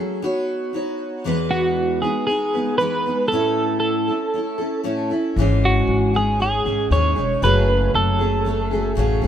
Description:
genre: acoustic pop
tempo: 117 BPM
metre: 4/4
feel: straight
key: E major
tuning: A4 = 440 Hz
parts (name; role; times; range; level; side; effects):
- picked steel-string acoustic guitar; accompaniment; 0.0-9.3 s; E2 to C#5; -22 LUFS; equal; double-tracked left and right
- twelve-string electric guitar; melody; 1.5-8.9 s; F#4 to C#5; -21 LUFS; right 1 dB; tremolo
- upright bass; bass; 5.4-9.3 s; E1 to D#2; -20 LUFS; left 1 dB; none
room: light reverb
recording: rough home demo mix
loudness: -18 LUFS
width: side -10 dB against mid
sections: 0.0-1.2 A section; 1.2-9.3 B section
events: none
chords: 0.2 Badd9; 1.2 Emaj7; 3.3 A; 5.4 C#madd9/G#; 7.4 F#madd9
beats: 0.22 0.73 | 1.25 1.76 2.28 2.79 | 3.31 3.82 4.34 4.85 | 5.37 5.88 6.39 6.91 | 7.42 7.94 8.45 8.96

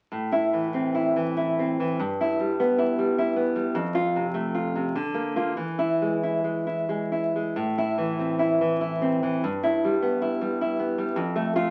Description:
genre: romantic piece for solo classical guitar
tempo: 88-106 BPM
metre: 3/4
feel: rubato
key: A minor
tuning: A4 = 441 Hz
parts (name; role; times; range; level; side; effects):
- nylon-string guitar; solo; 0.1-11.7 s; F2 to F4; -25 LUFS; equal; none
room: wet club reverb, RT60 0.7 s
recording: very old 78 rpm record, vinyl crackle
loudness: -25 LUFS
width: mono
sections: 0.1-11.7 A section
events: none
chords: 0.1 Am; 2.0 Em/G; 3.7 F; 4.9 Bb/D; 5.6 E; 7.6 Am; 9.4 Em/G; 11.2 F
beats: | 0.12 0.74 1.38 | 2.00 2.59 3.16 | 3.74 4.34 4.95 | 5.57 6.23 6.89 | 7.56 8.20 8.81 | 9.42 10.01 10.59 | 11.16

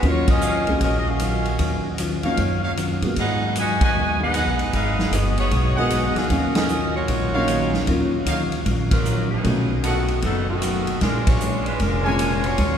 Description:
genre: jazz, big band swing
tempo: 153 BPM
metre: 4/4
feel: swing 65% on 8ths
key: Eb minor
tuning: A4 = 438 Hz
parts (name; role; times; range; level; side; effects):
- bright saxophone section; melody; 0.0-12.8 s; D#3 to Ab5; -24 LUFS; equal; none
- dark upright piano; accompaniment; 0.0-9.7, 12.0-12.2 s; D3 to F5; -28 LUFS; equal; none
- hollow-body jazz guitar; accompaniment; 0.0-12.8 s; Ab2 to F4; -28 LUFS; left 3 dB; none
- upright bass; bass; 0.0-12.8 s; F1 to A2; -24 LUFS; equal; none
- swinging big-band drum kit; drums; 0.0-12.7 s; hi-hat, kick drum, ride cymbal, snare drum; -26 LUFS; equal; none
- clear trumpet section; stabs; 0.4-12.5 s; D4 to Ab5; -30 LUFS; equal; none
room: wet cathedral reverb, RT60 5.8 s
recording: recorded in a church or concert hall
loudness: -18 LUFS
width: side -8 dB against mid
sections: 0.0-12.8 A section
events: band accent 0.2, 3.8, 6.5, 8.8, 11.2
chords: 0.0 Ebm9; 3.2 Abm7; 6.3 Ebm9; 9.4 B7; 11.0 Bb7#9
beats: | 0.02 0.41 0.81 1.20 | 1.59 1.99 2.38 2.77 | 3.16 3.56 3.95 4.34 | 4.73 5.12 5.52 5.91 | 6.30 6.69 7.09 7.48 | 7.87 8.26 8.65 9.05 | 9.44 9.83 10.22 10.62 | 11.01 11.40 11.79 12.18 | 12.58

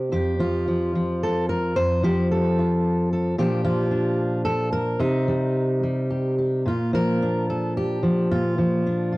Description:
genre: folk, solo fingerstyle acoustic guitar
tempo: 110 BPM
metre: 3/4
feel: rubato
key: unclear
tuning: A4 = 440 Hz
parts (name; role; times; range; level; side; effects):
- fingerpicked steel-string acoustic guitar; solo; 0.0-9.2 s; F2 to Eb5; -20 LUFS; equal; cassette tape
room: light reverb, studio reverb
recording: home recording on cassette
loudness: -20 LUFS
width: side -20 dB against mid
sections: 0.0-6.7 A section; 6.7-9.2 B section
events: none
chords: 0.1 F; 3.4 Bb; 5.0 Cm; 6.7 Bb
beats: | 0.12 0.67 1.22 | 1.76 2.30 2.84 | 3.38 3.91 4.45 | 4.99 5.54 6.09 | 6.66 7.21 7.76 | 8.31 8.85

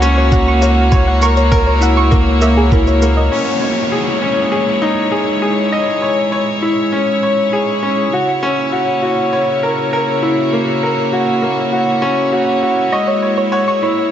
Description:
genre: piano and strings electronica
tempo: 100 BPM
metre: 4/4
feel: straight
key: C# dorian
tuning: A4 = 439 Hz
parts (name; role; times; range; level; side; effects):
- rich chamber string section; sustained chords; 0.0-14.1 s; C#3 to C#5; -17 LUFS; left 1 dB; sidechain pumping
- bright grand piano; riff; 0.0-14.1 s; A#3 to D#5; -16 LUFS; equal; digital delay
- warm sub bass; bass; 0.0-3.3 s; C#2; -14 LUFS; equal; sidechain pumping
- shaker; drums; 0.0-3.1 s; none; -30 LUFS; right 4 dB; low-pass filter on perc, studio reverb
- soft round pluck; arpeggios; 0.2-3.2, 12.9-13.9 s; G#4 to C#6; -20 LUFS; right 2 dB; chorus, cassette tape, sidechain pumping, digital delay
- electronic kick drum; drums; 0.3-2.8 s; none; -14 LUFS; equal; studio reverb
- downlifter; sound effects; 3.3-8.1 s; none; -25 LUFS; equal; none
room: moderate scoring stage reverb, RT60 1.4 s, digital ambience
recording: nothing above 7.9 kHz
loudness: -12 LUFS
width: side -10 dB against mid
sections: 0.0-3.3 A section; 3.3-14.1 B section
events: none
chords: 0.0 F#7/C#; 3.3 C#madd9; 8.1 F#7/C#; 12.9 C#madd9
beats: 0.33 | 0.93 1.52 2.12 2.73 | 3.33 3.92 4.53 5.12 | 5.72 6.33 6.92 7.53 | 8.12 8.72 9.32 9.93 | 10.53 11.12 11.72 12.32 | 12.93 13.53

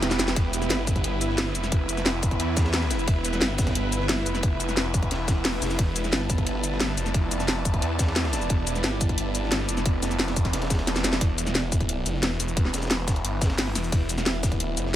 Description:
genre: dark technical drum and bass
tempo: 177 BPM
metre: 4/4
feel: straight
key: E phrygian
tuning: A4 = 441 Hz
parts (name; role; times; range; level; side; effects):
- deep dark ambient pad; sustained chords; 0.0-15.0 s; B3 to D5; -32 LUFS; right 1 dB; chorus, built-in reverb, sidechain pumping
- snarling distorted saw bass; bass; 0.0-14.9 s; E1 to E2; -28 LUFS; equal; distortion
- crunchy breakbeat drum kit; drums; 0.0-14.9 s; hi-hat, ride cymbal, snare drum; -36 LUFS; equal; none
- drum and bass drum kit; drums; 0.0-14.8 s; cabasa, hi-hat, snare drum; -26 LUFS; equal; none
- rich studio string section; texture; 0.0-11.2 s; E4 to A5; -34 LUFS; equal; sidechain pumping
- electronic kick drum; drums; 0.4-14.6 s; none; -24 LUFS; equal; none
room: studio ambience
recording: none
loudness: -22 LUFS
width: side -12 dB against mid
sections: 0.0-11.2 A section; 11.2-15.0 A section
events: drop 0.0-11.2, 11.2-15.0; drum fill 0.0-0.4, 10.9-11.2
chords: 0.0 E5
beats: 0.03 | 0.36 0.70 1.04 1.38 | 1.72 2.06 2.40 2.74 | 3.08 3.42 3.75 4.09 | 4.43 4.77 5.11 5.45 | 5.79 6.13 6.47 6.80 | 7.14 7.48 7.82 8.16 | 8.50 8.84 9.18 9.52 | 9.86 10.20 10.53 10.87 | 11.21 11.55 11.89 12.23 | 12.57 12.91 13.25 13.59 | 13.92 14.26 14.60 14.94

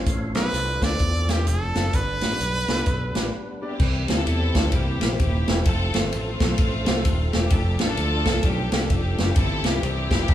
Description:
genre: uptempo gospel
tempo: 129 BPM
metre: 4/4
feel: swing 62% on 8ths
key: C major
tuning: A4 = 440 Hz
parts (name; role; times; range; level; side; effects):
- percussive tonewheel organ; sustained chords; 0.0-10.3 s; D3 to E#5; -34 LUFS; right 1 dB; slow rotary speaker, overdrive, chorus vibrato
- fingered electric bass; bass; 0.0-10.3 s; Eb1 to E2; -25 LUFS; equal; none
- warm concert grand piano; accompaniment; 0.1-10.3 s; G2 to D5; -32 LUFS; left 2 dB; none
- swinging big-band drum kit; drums; 0.1-10.3 s; crash cymbal, hi-hat, kick drum, ride cymbal, snare drum; -23 LUFS; equal; none
- brilliant trumpet; melody; 0.4-3.6 s; G4 to D5; -27 LUFS; right 1 dB; none
- warm studio string section; melody; 3.6-10.3 s; A3 to A4; -29 LUFS; left 1 dB; none
room: wet large studio reverb, RT60 1.4 s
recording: band playing live in one room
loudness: -20 LUFS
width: side -12 dB against mid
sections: 0.0-3.8 A section; 3.8-10.3 B section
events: break 3.3-3.8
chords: 0.1 Dm7/A; 1.9 G; 3.8 C; 4.7 C7; 5.7 F; 7.5 Dm/F; 9.4 C/G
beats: | 0.07 0.53 1.00 1.46 | 1.93 2.40 2.86 3.33 | 3.79 4.26 4.72 5.19 | 5.65 6.12 6.58 7.04 | 7.51 7.97 8.44 8.90 | 9.36 9.82 10.29

